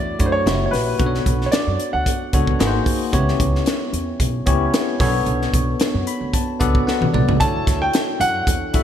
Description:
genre	polished 1980s jazz-funk pop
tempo	112 BPM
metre	4/4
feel	swing 54% on 16ths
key	B minor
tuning	A4 = 440 Hz
part	warm grand piano	melody	0.0-2.8, 7.4-8.8 s	B4 to A5	-22 LUFS	right 1 dB	none
part	bell-like tine electric piano	accompaniment	0.0-8.8 s	A3 to B5	-22 LUFS	left 2 dB	medium stereo tremolo, lush chorus
part	upright bass	bass	0.0-8.8 s	F#1 to F#2	-22 LUFS	right 1 dB	none
part	crisp fusion drum kit	drums	0.2-8.8 s	hi-hat, kick drum, snare drum, toms	-20 LUFS	equal	gated reverb
room	light reverb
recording	bright 1980s-style digital production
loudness	-17 LUFS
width	side -9 dB against mid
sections	0.0-8.8 A section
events	tine electric piano fill 5.8-7.4; drum fill 6.9-7.4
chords	0.5 F#7b9; 1.0 Bm9; 2.6 G#7; 3.1 C#m7b5; 5.0 Bm9; 7.4 Dmaj7

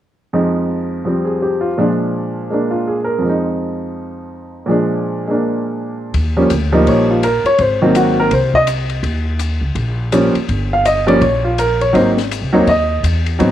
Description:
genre	jazz piano trio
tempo	166 BPM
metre	4/4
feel	swing 63% on 8ths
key	Eb major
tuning	A4 = 441 Hz
part	warm upright piano	melody	0.3-13.5 s	F2 to F5	-14 LUFS	equal	none
part	upright bass	bass	6.1-13.5 s	G1 to Fb2	-18 LUFS	equal	none
part	compact cocktail drum kit	drums	6.1-13.5 s	hi-hat, kick drum, ride cymbal, snare drum	-26 LUFS	left 6 dB	none
room	light reverb, studio ambience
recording	1960s-style stereo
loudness	-13 LUFS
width	side -12 dB against mid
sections	0.3-6.1 A section; 6.1-13.5 B section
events	none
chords	0.3 Fm7; 1.8 Bb7; 3.2 Fm7; 4.7 Bb7; 6.1 Eb7; 7.6 Ab7; 9.0 Eb7; 11.9 Ab7

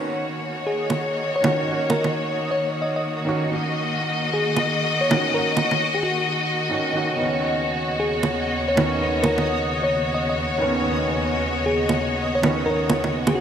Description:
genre	future garage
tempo	131 BPM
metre	4/4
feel	swing 64% on 16ths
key	Eb minor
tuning	A4 = 439 Hz
part	felt-muted upright piano	accompaniment	0.0-13.4 s	Eb3 to Gb4	-28 LUFS	right 2 dB	digital delay
part	rich chamber string section	sustained chords	0.0-13.4 s	Eb2 to Eb5	-23 LUFS	left 1 dB	none
part	backwards swelling texture	texture	0.4-13.4 s	Eb5	-32 LUFS	equal	built-in reverb
part	bell-like FM electric piano	melody	0.7-13.4 s	Gb4 to Eb5	-26 LUFS	left 1 dB	chorus, digital delay
part	bongos	drums	0.9-13.3 s	none	-23 LUFS	right 3 dB	overdrive, small room ambience
room	wet lush hall reverb, RT60 1.9 s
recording	bright 1980s-style digital production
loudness	-20 LUFS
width	side -8 dB against mid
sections	0.0-13.4 A section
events	none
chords	0.0 Ebm7; 7.2 Bsus2/Eb

